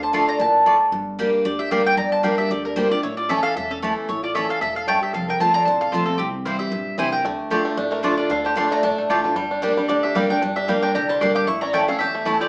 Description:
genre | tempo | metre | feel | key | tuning
bluegrass | 228 BPM | 4/4 | swing 55% on 8ths | D minor | A4 = 439 Hz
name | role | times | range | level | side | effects
mandolin | melody | 0.0-12.5 s | G4 to D6 | -22 LUFS | equal | none
lap resonator guitar | second line | 0.0-12.5 s | C4 to G5 | -27 LUFS | equal | none
picked steel-string acoustic guitar | accompaniment | 0.0-12.5 s | E2 to G4 | -24 LUFS | equal | none
upright bass | bass | 0.0-12.3 s | E1 to E2 | -39 LUFS | equal | none
mandolin | stabs | 0.1-12.4 s | A3 to A5 | -25 LUFS | right 1 dB | none
bluegrass banjo | arpeggios | 7.2-12.5 s | G3 to G4 | -24 LUFS | equal | none
room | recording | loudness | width
wet studio reverb, RT60 0.9 s | heard from further back in the room, small speaker sound | -18 LUFS | side -28 dB against mid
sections
0.0-12.5 A section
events
none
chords
0.0 Dm; 0.9 Gm; 3.0 A; 5.1 F; 6.2 C; 7.2 Dm; 9.4 Gm; 11.5 A

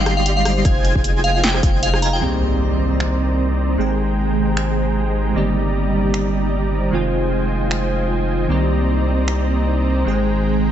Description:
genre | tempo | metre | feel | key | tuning
future bass | 153 BPM | 4/4 | swing 56% on 16ths, half-time | C minor | A4 = 440 Hz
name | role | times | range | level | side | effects
glassy synth bell | melody | 0.0-2.3 s | F5 to Bb5 | -23 LUFS | left 2 dB | chorus, sidechain pumping, low-pass filter, ping-pong delay
airy dreamy lead | arpeggios | 0.0-2.2 s | Ab6 to C7 | -28 LUFS | left 1 dB | chorus, sidechain pumping
concert harp | arpeggios | 0.0-10.7 s | Bb3 to Eb5 | -28 LUFS | right 1 dB | sidechain pumping, low-pass filter, tape echo
dense compressed supersaw | riff | 0.0-10.7 s | G3 to C6 | -22 LUFS | right 1 dB | sidechain pumping, low-pass filter, tape echo
saturated sub bass | bass | 0.0-10.7 s | F1 to C2 | -20 LUFS | equal | sidechain pumping
big-room dance drum kit | drums | 0.1-9.4 s | finger snaps, hi-hat, rim click, snare drum | -24 LUFS | equal | none
electronic kick drum | drums | 0.7-1.7 s | none | -18 LUFS | equal | none
glassy digital keys | accompaniment | 2.2-10.7 s | Eb3 to G5 | -25 LUFS | right 2 dB | chorus, sidechain pumping, tape echo
airy breathy pad | sustained chords | 2.2-10.7 s | C3 to G5 | -29 LUFS | equal | none
impact | sound effects | 2.2-3.8 s | none | -30 LUFS | equal | none
room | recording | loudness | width
light reverb, digital ambience | nothing above 7.9 kHz | -16 LUFS | side -10 dB against mid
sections
0.0-2.2 A section; 2.2-10.7 B section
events
drop 0.0-2.2; impact 2.2-3.8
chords
0.0 Cm7/G; 0.7 Fm7; 2.2 Cm7; 3.8 Abmaj7; 5.4 Cm7/G; 6.9 Fm7; 8.5 Cm7; 10.1 Abmaj7

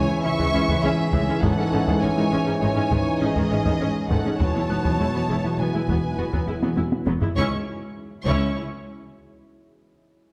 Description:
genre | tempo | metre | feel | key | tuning
cinematic, hybrid orchestral and electronic film score | 101 BPM | 5/4 | straight | C# minor | A4 = 440 Hz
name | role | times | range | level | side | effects
warm symphonic violin section | melody | 0.0-8.6 s | D#5 to C#6 | -33 LUFS | equal | none
warm symphonic violin section | second line | 0.0-8.6 s | G#4 to E5 | -34 LUFS | equal | none
deep dark ambient pad | sustained chords | 0.1-7.7 s | E3 to G#5 | -33 LUFS | equal | chorus, built-in reverb
mellow French horn section | sustained chords | 0.0-7.6 s | B3 to E4 | -34 LUFS | equal | none
warm trombone section | sustained chords | 0.0-7.6 s | G#2 to G#3 | -32 LUFS | equal | none
thumb-piano-like synth pluck | arpeggios | 0.0-7.3 s | C#3 to G#4 | -33 LUFS | equal | none
warm baby grand piano | texture | 0.0-7.4 s | E5 to F#6 | -42 LUFS | equal | none
rich symphonic viola section | accompaniment | 0.2-8.6 s | D#3 to F#4 | -33 LUFS | equal | none
warm symphonic cello section | bass | 0.2-8.6 s | C#2 to G#2 | -31 LUFS | equal | none
warm symphonic double bass section | bass | 0.2-8.6 s | E1 to C#2 | -32 LUFS | equal | none
solo taiko drums | drums | 0.4-9.4 s | none | -30 LUFS | equal | none
room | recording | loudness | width
wet scoring stage reverb, RT60 1.7 s | none | -22 LUFS | mono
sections
0.0-7.4 A section; 7.4-10.3 B section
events
drum fill 6.6-7.4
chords
0.0 C#m; 1.4 G#sus4; 4.4 Eadd9; 7.4 C#m

